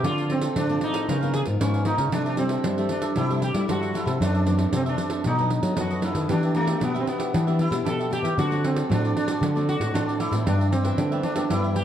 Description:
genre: samba and choro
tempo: 115 BPM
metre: 4/4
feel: straight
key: unclear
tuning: A4 = 440 Hz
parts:
  - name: sitar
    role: melody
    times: 0.0-11.8 s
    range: A3 to A4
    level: -26 LUFS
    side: right 2 dB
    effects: none
  - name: cavaquinho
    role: accompaniment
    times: 0.0-11.8 s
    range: D4 to E#5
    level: -35 LUFS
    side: right 4 dB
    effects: none
  - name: nylon-string guitar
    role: accompaniment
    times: 0.0-11.8 s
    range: F#2 to A#4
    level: -31 LUFS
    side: left 5 dB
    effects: none
  - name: nylon-string guitar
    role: bass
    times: 0.0-11.8 s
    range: F#2 to G3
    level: -25 LUFS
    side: equal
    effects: none
  - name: pandeiro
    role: percussion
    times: 0.0-11.8 s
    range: none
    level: -30 LUFS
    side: right 1 dB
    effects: none
room: light reverb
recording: dark, warm production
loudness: -21 LUFS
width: side -10 dB against mid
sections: 0.0-11.8 A section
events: none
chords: 0.0 Dm7; 1.1 C#6; 2.1 C6; 4.2 F#m7b5; 5.3 B7; 6.3 Em7; 8.4 D7; 10.5 G6

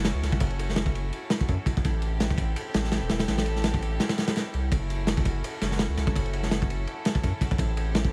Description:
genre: drum and bass, jungle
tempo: 167 BPM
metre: 4/4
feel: swing 54% on 16ths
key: F# minor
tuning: A4 = 439 Hz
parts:
  - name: clear studio string section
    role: sustained chords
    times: 0.0-8.1 s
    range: C4 to A4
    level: -39 LUFS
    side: equal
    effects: vintage 12-bit sampler grit
  - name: saturated sub bass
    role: bass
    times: 0.0-8.1 s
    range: E1 to F#2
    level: -31 LUFS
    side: equal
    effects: none
  - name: crunchy breakbeat drum kit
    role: drums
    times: 0.0-8.1 s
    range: kick drum, ride cymbal, snare drum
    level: -29 LUFS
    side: equal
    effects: none
room: small room ambience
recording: vinyl crackle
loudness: -27 LUFS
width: mono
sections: 0.0-8.1 A section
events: kick drops out 4.0-4.7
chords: 0.0 F#m7; 1.8 Am7; 4.7 F#m7; 7.6 Am7

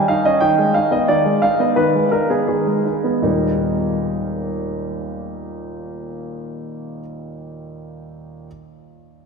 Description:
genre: classical-period piano sonatina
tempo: 79-92 BPM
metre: 4/4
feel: straight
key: Eb major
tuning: A4 = 439 Hz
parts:
  - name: clear concert grand piano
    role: solo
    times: 0.0-8.5 s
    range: Eb2 to G5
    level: -18 LUFS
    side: equal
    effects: none
room: wet cathedral reverb, RT60 4.8 s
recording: in a vast, echoing space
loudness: -16 LUFS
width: side -5 dB against mid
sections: 0.0-3.2 A section; 3.2-6.3 B section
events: slowing down 0.0-3.2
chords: 0.4 Abm/Eb; 3.2 Eb

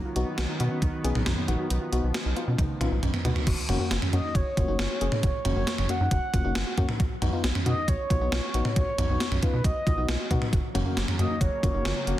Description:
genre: synth-pop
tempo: 136 BPM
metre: 4/4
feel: straight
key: F# major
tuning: A4 = 440 Hz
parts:
  - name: chorused pulse-width pad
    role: sustained chords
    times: 0.0-3.5, 10.5-12.2 s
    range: C#3 to B3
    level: -36 LUFS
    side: right 2 dB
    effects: none
  - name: rubbery square bass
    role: bass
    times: 0.0-12.2 s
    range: E#1 to B2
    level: -28 LUFS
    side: equal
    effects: none
  - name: soft round pluck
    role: arpeggios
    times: 0.1-12.1 s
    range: A#3 to F#4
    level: -37 LUFS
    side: right 4 dB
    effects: chorus, tape echo
  - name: FM electric piano with tremolo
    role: accompaniment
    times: 0.2-12.2 s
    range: A#3 to G#4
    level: -33 LUFS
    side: left 5 dB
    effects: none
  - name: gated 80s digital drum machine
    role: drums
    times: 0.2-12.2 s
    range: crash cymbal, hi-hat, kick drum, snare drum, toms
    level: -27 LUFS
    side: equal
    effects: gated reverb, gated reverb snare, overdrive
  - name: mellow horn-like synth lead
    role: melody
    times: 4.1-12.2 s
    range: B4 to F#5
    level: -32 LUFS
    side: right 1 dB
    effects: chorus
room: light reverb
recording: dense, heavily limited modern master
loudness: -24 LUFS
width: side -14 dB against mid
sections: 0.0-3.5 A section; 3.5-12.2 B section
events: drum fill 2.6-3.5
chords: 0.0 B; 3.5 F#; 7.0 B; 10.5 F#

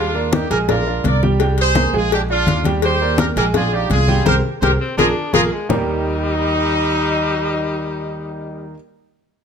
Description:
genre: latin, salsa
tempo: 168 BPM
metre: 4/4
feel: straight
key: Eb major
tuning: A4 = 441 Hz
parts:
  - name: bright horn section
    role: melody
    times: 0.0-8.7 s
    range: D4 to D5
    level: -20 LUFS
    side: equal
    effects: none
  - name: clear grand piano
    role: accompaniment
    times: 0.0-8.7 s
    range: Eb3 to Ab5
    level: -23 LUFS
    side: right 4 dB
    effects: none
  - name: upright bass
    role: bass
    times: 0.0-8.7 s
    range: Bb1 to Eb2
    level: -21 LUFS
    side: right 1 dB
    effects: none
  - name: congas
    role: percussion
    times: 0.1-5.8 s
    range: none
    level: -22 LUFS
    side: left 3 dB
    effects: none
  - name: cowbell and bongos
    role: percussion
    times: 0.3-5.8 s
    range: none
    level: -24 LUFS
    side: left 8 dB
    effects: none
  - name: clear baritone saxophone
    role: second line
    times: 4.8-8.7 s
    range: G3 to D4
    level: -24 LUFS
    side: left 5 dB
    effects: none
room: light reverb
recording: close, detailed microphones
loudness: -15 LUFS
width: side -7 dB against mid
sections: 0.0-5.7 A section; 5.7-8.6 B section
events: band accent 4.3-5.7; drum fill 5.0-5.7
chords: 0.0 Ebmaj7; 0.7 Bb; 1.4 C5; 2.1 Bb7; 2.8 Ebmaj7; 3.6 Bb7; 4.3 C5; 5.0 Bb7; 5.7 Ebmaj7

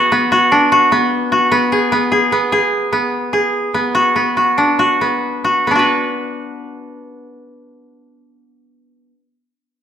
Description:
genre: contemporary instrumental, contemporary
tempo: 134-150 BPM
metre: 5/4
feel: straight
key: B dorian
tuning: A4 = 436 Hz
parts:
  - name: koto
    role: solo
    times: 0.0-9.2 s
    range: B3 to B4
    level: -13 LUFS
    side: equal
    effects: none
room: moderate recital hall reverb, RT60 1.4 s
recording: minimal, uncompressed stereo recording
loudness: -12 LUFS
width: side -8 dB against mid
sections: 0.0-5.7 A section; 5.7-9.8 B section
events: slowing down 2.3-5.7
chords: 0.0 Bm

